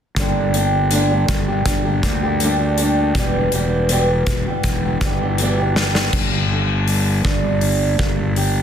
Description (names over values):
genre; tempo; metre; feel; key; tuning
quiet-loud alternative rock; 80 BPM; 4/4; straight; unclear; A4 = 440 Hz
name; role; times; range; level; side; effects
fingerpicked old ladder-braced acoustic guitar; arpeggios; 0.2-8.6 s; E2 to G4; -21 LUFS; equal; analog delay
fuzz fingered electric bass; bass; 0.2-8.6 s; E1 to D2; -20 LUFS; equal; overdrive
big rock drum kit; drums; 0.2-8.5 s; crash cymbal, hi-hat, kick drum, snare drum; -21 LUFS; left 1 dB; soft clipping on kick, soft clipping on snare
room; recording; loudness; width
little or no reverb; dense, heavily limited modern master; -16 LUFS; side -8 dB against mid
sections
0.2-6.1 A section; 6.1-8.6 B section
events
drum fill 5.8-6.1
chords
0.2 Gm; 3.2 Em; 6.1 Gm